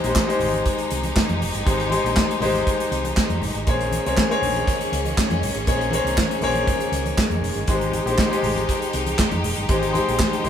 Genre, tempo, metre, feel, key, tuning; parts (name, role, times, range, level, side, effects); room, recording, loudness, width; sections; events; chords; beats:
disco; 120 BPM; 4/4; straight; Ab major; A4 = 439 Hz
bright concert grand piano; accompaniment; 0.0-10.5 s; Ab3 to Db5; -23 LUFS; left 2 dB
bright studio string section; sustained chords; 0.0-10.5 s; Eb3 to G4; -27 LUFS; equal
hollow-body short-scale fingered electric bass; bass; 0.0-10.5 s; F1 to F2; -27 LUFS; right 1 dB
modern studio drum kit; drums; 0.0-10.5 s; handclaps, hi-hat, kick drum, snare drum; -23 LUFS; right 1 dB
congas; percussion; 0.2-10.5 s; -33 LUFS; left 1 dB
moderate studio reverb, RT60 0.6 s; band playing live in one room; -19 LUFS; side -9 dB against mid
0.0-10.5 A section
0.0 Abmaj7; 3.7 Bbm9; 7.7 Abmaj7
0.16 0.66 1.16 | 1.66 2.17 2.67 3.17 | 3.67 4.17 4.67 5.18 | 5.68 6.18 6.68 7.18 | 7.68 8.19 8.69 9.19 | 9.69 10.20